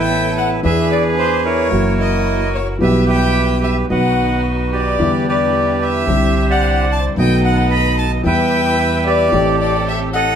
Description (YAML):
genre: tango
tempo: 111 BPM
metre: 4/4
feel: rubato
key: E minor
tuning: A4 = 440 Hz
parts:
  - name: bandoneon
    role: melody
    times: 0.0-10.4 s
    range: E4 to B5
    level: -18 LUFS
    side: right 3 dB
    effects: none
  - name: warm violin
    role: second line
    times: 0.0-10.4 s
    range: C5 to B5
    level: -22 LUFS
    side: left 6 dB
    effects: none
  - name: dark upright piano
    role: accompaniment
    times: 0.0-10.4 s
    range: A1 to A4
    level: -19 LUFS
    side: left 1 dB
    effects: none
  - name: muted studio string section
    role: stabs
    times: 0.0-10.3 s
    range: A#3 to C5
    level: -26 LUFS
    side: equal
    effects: none
  - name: upright bass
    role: bass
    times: 0.0-10.3 s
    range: F#1 to E2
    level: -20 LUFS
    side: right 1 dB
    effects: none
room: moderate studio reverb, RT60 0.6 s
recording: none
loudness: -13 LUFS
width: side -8 dB against mid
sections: 0.0-10.4 A section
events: none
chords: 0.0 Asus2; 0.6 E7; 1.7 F#7; 2.8 Em/B; 3.9 B; 5.0 Em7; 6.1 Cadd9; 7.2 B7; 8.2 Em; 9.3 Am7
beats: 0.10 | 0.64 1.18 1.72 2.26 | 2.80 3.35 3.89 4.44 | 4.99 5.53 6.08 6.62 | 7.16 7.70 8.24 8.78 | 9.32 9.85